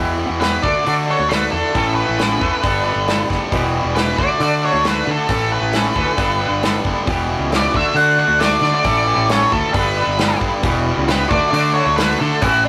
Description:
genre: quiet-loud alternative rock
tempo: 135 BPM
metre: 4/4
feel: straight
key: unclear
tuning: A4 = 445 Hz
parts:
  - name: twangy electric guitar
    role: arpeggios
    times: 0.0-12.7 s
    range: E2 to B4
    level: -24 LUFS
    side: equal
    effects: harmonic tremolo
  - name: distorted electric guitar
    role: riff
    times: 0.0-12.7 s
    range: E2 to D4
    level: -26 LUFS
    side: equal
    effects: overdrive
  - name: fuzz fingered electric bass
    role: bass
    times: 0.0-12.7 s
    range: E1 to D3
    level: -24 LUFS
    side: equal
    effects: overdrive
  - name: octave-fuzz lead guitar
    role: melody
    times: 0.4-12.7 s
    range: E4 to F#5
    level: -20 LUFS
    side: equal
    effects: distortion
  - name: loose indie drum kit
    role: drums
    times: 0.4-12.5 s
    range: hi-hat, kick drum, snare drum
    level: -25 LUFS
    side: equal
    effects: none
room: moderate small room reverb, RT60 0.5 s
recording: rough rehearsal-room recording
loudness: -17 LUFS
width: mono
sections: 0.0-12.7 A section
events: none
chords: 0.0 Em; 0.6 D; 1.7 A; 2.6 Gadd9; 3.5 Em; 4.2 D; 5.3 A; 6.2 Gadd9; 7.1 Em; 7.7 D; 8.9 A; 9.7 Gadd9; 10.6 Em; 11.3 D

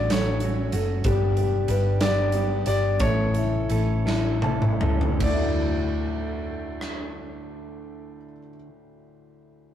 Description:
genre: six-eight pop ballad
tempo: 50-63 BPM (dotted quarters)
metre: 6/8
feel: straight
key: D major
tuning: A4 = 440 Hz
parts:
  - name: clear concert grand piano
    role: melody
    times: 0.0-8.4 s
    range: C#5 to D5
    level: -30 LUFS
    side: left 2 dB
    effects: none
  - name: dark upright piano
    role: accompaniment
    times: 0.0-9.7 s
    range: D2 to A5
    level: -30 LUFS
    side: left 3 dB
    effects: none
  - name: direct-recorded clean electric guitar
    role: arpeggios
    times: 0.0-8.8 s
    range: G2 to A4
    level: -34 LUFS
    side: right 2 dB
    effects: none
  - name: hollow-body short-scale fingered electric bass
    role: bass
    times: 0.0-8.4 s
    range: F#1 to D2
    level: -25 LUFS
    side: equal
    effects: none
  - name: huge arena drum kit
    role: drums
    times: 0.1-7.0 s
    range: crash cymbal, hi-hat, kick drum, rim click, snare drum, toms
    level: -28 LUFS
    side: right 1 dB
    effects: none
room: moderate small room reverb, RT60 0.5 s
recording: rough rehearsal-room recording, warm saturation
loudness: -21 LUFS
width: side -10 dB against mid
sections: 0.0-5.2 A section; 5.2-9.7 B section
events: slowing down 1.1-5.2; drum fill 4.1-5.2; upright piano fill 4.1-5.2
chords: 0.0 F#m/A; 1.1 G; 3.0 A; 5.2 Dadd9

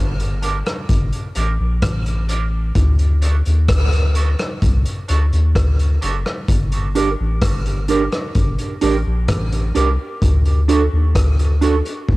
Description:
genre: dub reggae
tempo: 64 BPM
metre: 4/4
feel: straight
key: G harmonic minor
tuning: A4 = 440 Hz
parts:
  - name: soft dub sub bass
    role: bass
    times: 0.0-12.2 s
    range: F#1 to Eb2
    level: -16 LUFS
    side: equal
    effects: none
  - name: vintage drum kit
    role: drums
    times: 0.2-12.2 s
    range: hi-hat, kick drum, rim click, toms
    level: -20 LUFS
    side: equal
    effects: cassette tape
  - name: mellow electric guitar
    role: accompaniment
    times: 0.4-11.9 s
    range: D4 to Bb4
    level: -23 LUFS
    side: right 5 dB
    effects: lush chorus, high-pass filter, cassette tape, dub echo
room: light reverb, small room ambience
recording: home recording on cassette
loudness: -15 LUFS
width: side -20 dB against mid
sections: 0.0-12.2 A section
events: none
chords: 0.0 Gm; 2.8 D; 6.5 Gm; 10.2 D

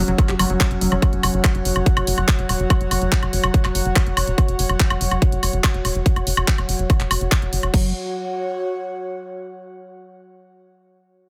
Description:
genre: psychedelic trance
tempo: 143 BPM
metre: 4/4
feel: straight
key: unclear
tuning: A4 = 440 Hz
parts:
  - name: overtone-sweeping drone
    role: sustained chords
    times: 0.0-7.8 s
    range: F#3 to F#4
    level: -31 LUFS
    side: equal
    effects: chorus, built-in reverb, sidechain pumping
  - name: liquid acid bass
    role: riff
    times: 0.0-1.0, 7.7-7.9 s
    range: F#3 to G4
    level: -28 LUFS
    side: equal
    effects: chorus, sidechain pumping, dub echo
  - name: tight sequencer bass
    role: bass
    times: 0.0-7.9 s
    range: E1 to G1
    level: -25 LUFS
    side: equal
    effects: none
  - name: airy breathy pad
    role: texture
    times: 0.0-9.4 s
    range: F#4 to F#5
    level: -30 LUFS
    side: equal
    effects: chorus, sidechain pumping
  - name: garage drum kit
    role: drums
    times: 0.1-7.8 s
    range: crash cymbal, handclaps, hi-hat, woodblock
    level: -26 LUFS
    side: equal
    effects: none
  - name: electronic kick drum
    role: drums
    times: 0.2-7.8 s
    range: none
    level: -19 LUFS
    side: equal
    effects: none
room: digital ambience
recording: none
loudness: -20 LUFS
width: mono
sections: 0.0-7.7 A section; 7.7-9.4 B section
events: filter sweep on analog synth bass 0.0-7.7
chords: 0.0 F#5

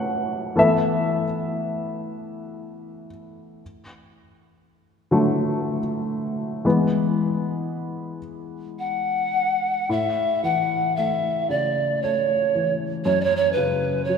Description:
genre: celtic folk, Celtic slow air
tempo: 58 BPM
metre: 3/4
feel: rubato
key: A major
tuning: A4 = 440 Hz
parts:
  - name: dark upright piano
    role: accompaniment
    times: 0.0-14.2 s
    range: F#2 to F#5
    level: -23 LUFS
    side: left 2 dB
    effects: none
  - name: reedy pan flute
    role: melody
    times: 8.8-14.2 s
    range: B4 to F#5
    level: -21 LUFS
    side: right 1 dB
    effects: none
room: wet church reverb, RT60 2.6 s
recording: minimal, uncompressed stereo recording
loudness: -20 LUFS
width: side -6 dB against mid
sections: 0.0-9.9 A section; 9.9-14.2 B section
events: upright piano solo 0.0-9.9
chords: 0.0 F#m; 0.6 Esus4; 3.6 D; 6.7 Eadd9; 9.9 A; 13.1 F#5

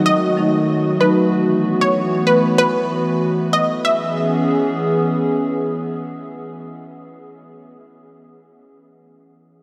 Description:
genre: dancehall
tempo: 95 BPM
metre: 4/4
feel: swing 56% on 16ths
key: C# minor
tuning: A4 = 440 Hz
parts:
  - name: hollow soft pad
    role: sustained chords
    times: 0.0-7.1 s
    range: D#3 to G#4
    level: -22 LUFS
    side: equal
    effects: chorus
  - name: analog pluck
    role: melody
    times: 0.1-5.7 s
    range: B4 to E5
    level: -22 LUFS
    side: equal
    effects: chorus, tape echo
  - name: marimba with medium mallets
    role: accompaniment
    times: 0.4-1.2 s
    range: F#3 to D#4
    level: -23 LUFS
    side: equal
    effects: none
room: wet huge ambient reverb, RT60 7.4 s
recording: dreamy mix soaked in reverb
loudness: -18 LUFS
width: mono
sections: 0.0-3.8 A section; 3.8-6.4 B section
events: none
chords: 0.0 D#dim; 1.3 B7sus4; 3.8 C#m7

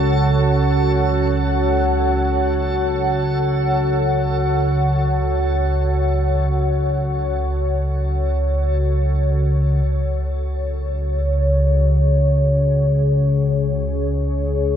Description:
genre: dark ambient drone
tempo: free time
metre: none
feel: none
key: unclear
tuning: A4 = 444 Hz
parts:
  - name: deep dark ambient pad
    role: sustained chords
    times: 0.0-14.8 s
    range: C#4 to A5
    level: -21 LUFS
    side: equal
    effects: chorus, built-in reverb
  - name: analog drone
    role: drone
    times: 0.0-14.8 s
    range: C#2 to C#3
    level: -18 LUFS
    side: equal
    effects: chorus
  - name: backwards swelling texture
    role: texture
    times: 0.0-9.9 s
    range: A4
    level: -32 LUFS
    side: right 3 dB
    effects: built-in reverb
room: wet lush hall reverb, RT60 2.6 s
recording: dreamy mix soaked in reverb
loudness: -16 LUFS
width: side -9 dB against mid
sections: 0.0-9.9 A section; 9.9-14.8 B section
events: none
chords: 0.0 F#m; 9.9 C#m

